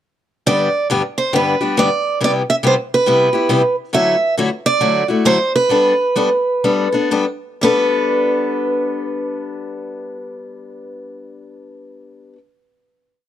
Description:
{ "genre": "jazz", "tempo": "118-138 BPM", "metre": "4/4", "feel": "swing 62% on 8ths", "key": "G major", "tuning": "A4 = 440 Hz", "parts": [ { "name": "picked steel-string acoustic guitar", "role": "melody", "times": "0.5-12.3 s", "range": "B4 to E5", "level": "-17 LUFS", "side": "right 3 dB", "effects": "none" }, { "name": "picked steel-string acoustic guitar", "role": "accompaniment", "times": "0.5-12.4 s", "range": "G2 to A4", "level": "-18 LUFS", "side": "left 4 dB", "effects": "none" } ], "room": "small room reverb", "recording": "dry, close 1970s-style studio recording", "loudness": "-14 LUFS", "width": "side -11 dB against mid", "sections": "0.5-7.6 A section; 7.6-11.7 final chord", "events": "slowing down 3.9-7.6", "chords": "0.5 G; 2.2 Cmaj7; 3.9 Dadd9; 5.7 Gadd9" }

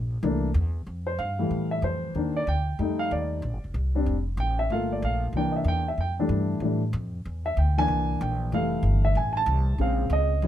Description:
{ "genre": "jazz, big band swing", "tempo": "188 BPM", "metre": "4/4", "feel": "swing 64% on 8ths", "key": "F major", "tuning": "A4 = 440 Hz", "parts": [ { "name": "upright bass", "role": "bass", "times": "0.0-10.5 s", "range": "F1 to A2", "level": "-26 LUFS", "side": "equal", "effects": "none" }, { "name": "warm baby grand piano", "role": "accompaniment", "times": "0.2-10.5 s", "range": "Db3 to A5", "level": "-26 LUFS", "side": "equal", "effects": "none" } ], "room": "light reverb", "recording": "close, detailed microphones", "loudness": "-24 LUFS", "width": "side -11 dB against mid", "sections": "0.9-10.5 A section", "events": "grand piano solo 0.9-10.5", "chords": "0.2 C13; 0.9 Fmaj9; 2.1 Ebmaj7; 2.8 F9; 3.4 Bb69 (rootless); 4.7 Gm9; 5.3 C9; 6.0 Fmaj13; 7.2 C7; 8.5 Fmaj9; 9.8 Bbm7" }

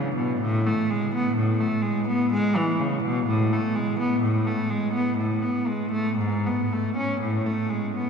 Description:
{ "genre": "classical, baroque-style suite movement for unaccompanied cello", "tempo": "57-64 BPM", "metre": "3/4", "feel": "rubato", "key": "unclear", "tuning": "A4 = 440 Hz", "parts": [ { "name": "rich cello", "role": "solo", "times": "0.0-8.1 s", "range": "G#2 to C#4", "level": "-22 LUFS", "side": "equal", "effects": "none" } ], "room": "wet cathedral reverb, RT60 6.4 s", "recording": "dark, warm production", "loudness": "-22 LUFS", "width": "side -6 dB against mid", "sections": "0.0-8.1 A section", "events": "none", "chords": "none" }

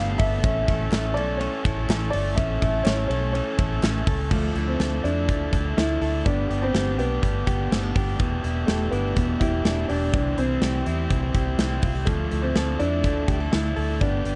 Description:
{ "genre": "jangly indie pop", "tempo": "124 BPM", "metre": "4/4", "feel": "straight", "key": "D dorian", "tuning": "A4 = 435 Hz", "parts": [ { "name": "warm upright piano", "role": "melody", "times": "0.0-14.3 s", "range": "A3 to F5", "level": "-30 LUFS", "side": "equal", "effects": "none" }, { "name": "overdriven electric guitar", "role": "accompaniment", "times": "0.0-14.4 s", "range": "E2 to A4", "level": "-34 LUFS", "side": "equal", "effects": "none" }, { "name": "direct-recorded clean electric guitar", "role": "arpeggios", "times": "0.0-14.4 s", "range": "E3 to A4", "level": "-34 LUFS", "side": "equal", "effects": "vibrato effect" }, { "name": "vintage muted fingered electric bass", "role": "bass", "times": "0.0-14.4 s", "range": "E1 to F2", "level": "-29 LUFS", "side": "equal", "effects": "none" }, { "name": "big rock drum kit", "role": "drums", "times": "0.2-14.4 s", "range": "crash cymbal, hi-hat, kick drum, ride cymbal, snare drum", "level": "-28 LUFS", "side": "equal", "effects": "vintage 12-bit sampler grit" }, { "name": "group handclap", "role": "percussion", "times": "0.9-3.9 s", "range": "none", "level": "-43 LUFS", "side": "equal", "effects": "none" } ], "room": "light reverb", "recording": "nothing above 10.6 kHz", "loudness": "-24 LUFS", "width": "mono", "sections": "0.0-4.3 A section; 4.3-14.4 B section", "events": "none", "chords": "0.4 A; 4.3 Dmadd9; 6.3 G; 8.2 Em7; 10.1 C; 12.1 Dmadd9" }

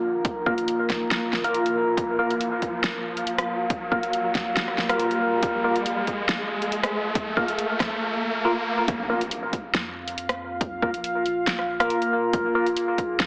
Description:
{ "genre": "deep dubstep", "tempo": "139 BPM", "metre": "4/4", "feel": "half-time", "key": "unclear", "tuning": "A4 = 442 Hz", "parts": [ { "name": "deep dark ambient pad", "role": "sustained chords", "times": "0.0-13.3 s", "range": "Bb3 to F5", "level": "-28 LUFS", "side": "equal", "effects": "chorus, built-in reverb" }, { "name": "riser and impact", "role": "sound effects", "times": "0.0-10.6 s", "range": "none", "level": "-30 LUFS", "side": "equal", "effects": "none" }, { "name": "deep house drum kit", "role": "drums", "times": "0.2-13.3 s", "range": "hi-hat, rim click, snare drum", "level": "-26 LUFS", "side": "equal", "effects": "overdrive" }, { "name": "electronic kick drum", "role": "drums", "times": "0.2-13.1 s", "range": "none", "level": "-29 LUFS", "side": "equal", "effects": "overdrive" }, { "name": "barky tine electric piano", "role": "stabs", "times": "0.5-12.7 s", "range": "Bb3 to Bb4", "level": "-25 LUFS", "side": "equal", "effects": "overdrive, phaser, dub echo" }, { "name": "soft dub sub bass", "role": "bass", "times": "8.9-13.3 s", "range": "Bb1 to F2", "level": "-43 LUFS", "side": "equal", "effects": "none" } ], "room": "wet spring reverb, RT60 1.4 s", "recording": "heavily compressed radio sound, multiband compression, AM radio sound", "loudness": "-22 LUFS", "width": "side -29 dB against mid", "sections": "0.0-8.9 A section; 8.9-13.3 B section", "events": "build-up 0.0-8.9; riser 0.0-8.9; filter sweep on tine electric piano 0.0-8.9; drop 8.9-13.3; impact 8.9-10.6", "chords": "0.0 Bb5" }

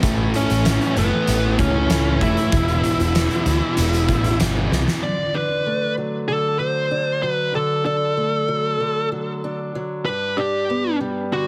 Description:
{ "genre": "quiet-loud alternative rock", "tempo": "96 BPM", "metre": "4/4", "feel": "straight", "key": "unclear", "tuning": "A4 = 440 Hz", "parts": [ { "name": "overdriven tonewheel organ", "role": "sustained chords", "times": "0.0-5.0 s", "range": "E3 to A4", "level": "-36 LUFS", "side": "equal", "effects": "none" }, { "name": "raw garage guitar", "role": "riff", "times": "0.0-5.0 s", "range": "E2 to A3", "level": "-30 LUFS", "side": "equal", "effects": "overdrive" }, { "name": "thick fuzz guitar", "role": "riff", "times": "0.0-5.0 s", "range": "E2 to A3", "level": "-27 LUFS", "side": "equal", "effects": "distortion" }, { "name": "growling picked electric bass", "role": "bass", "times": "0.0-4.9 s", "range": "E1 to D2", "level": "-24 LUFS", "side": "equal", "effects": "overdrive" }, { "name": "oversized low-tuned drum kit", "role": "drums", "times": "0.0-5.0 s", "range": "hi-hat, kick drum, snare drum", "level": "-26 LUFS", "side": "equal", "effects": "none" }, { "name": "fuzz lead guitar", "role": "melody", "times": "0.4-11.5 s", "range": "B3 to E5", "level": "-24 LUFS", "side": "equal", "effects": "distortion, digital delay" }, { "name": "fingerpicked acoustic archtop guitar", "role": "arpeggios", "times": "5.0-11.5 s", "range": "G2 to D4", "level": "-27 LUFS", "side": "equal", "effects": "none" } ], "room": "light reverb, small room ambience", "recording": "heavily compressed radio sound, multiband compression", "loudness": "-20 LUFS", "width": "mono", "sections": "0.0-5.0 A section; 5.0-11.5 B section", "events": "drum fill 4.7-5.0", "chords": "0.0 A; 2.5 Em; 5.0 D; 10.1 G" }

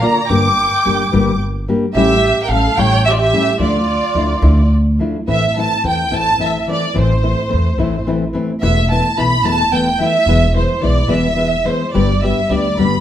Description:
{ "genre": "mexican folk, mariachi", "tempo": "72 BPM (dotted quarters)", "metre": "6/8", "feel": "straight", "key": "D minor, A minor from 5.3 s", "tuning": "A4 = 440 Hz", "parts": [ { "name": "warm studio violin section", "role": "melody", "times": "0.0-13.0 s", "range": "C5 to D6", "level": "-17 LUFS", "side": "right 2 dB", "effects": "none" }, { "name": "dark erhu", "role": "second line", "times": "0.0-4.7 s", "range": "F4 to G5", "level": "-20 LUFS", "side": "right 3 dB", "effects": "none" }, { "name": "nylon-string guitar", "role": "accompaniment", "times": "0.0-13.0 s", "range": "E2 to G4", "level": "-18 LUFS", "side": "left 3 dB", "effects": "none" }, { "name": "upright bass", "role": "bass", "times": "0.3-13.0 s", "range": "E1 to E2", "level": "-18 LUFS", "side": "equal", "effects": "none" } ], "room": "wet large studio reverb, RT60 1.1 s", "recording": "band playing live in one room", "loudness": "-13 LUFS", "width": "side -11 dB against mid", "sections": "0.0-5.3 A section; 5.3-13.0 B section", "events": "none", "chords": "0.3 Gm; 1.9 A7; 3.6 Dmadd9; 5.3 Am; 8.6 Esus4; 10.3 E; 11.9 G" }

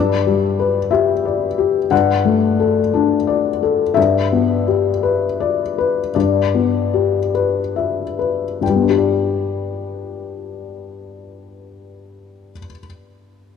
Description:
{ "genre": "classical", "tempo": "46-61 BPM", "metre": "4/4", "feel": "rubato", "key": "G major", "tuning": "A4 = 440 Hz", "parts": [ { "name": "felt-muted upright piano", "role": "accompaniment", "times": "0.0-13.6 s", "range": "G2 to G5", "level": "-16 LUFS", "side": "left 6 dB", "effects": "none" } ], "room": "light reverb, small room ambience", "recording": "1960s-style stereo", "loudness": "-15 LUFS", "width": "side -6 dB against mid", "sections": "0.0-8.6 A section; 8.6-13.6 B section", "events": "slowing down 0.0-8.6", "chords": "0.0 G; 1.9 D/G; 4.0 G" }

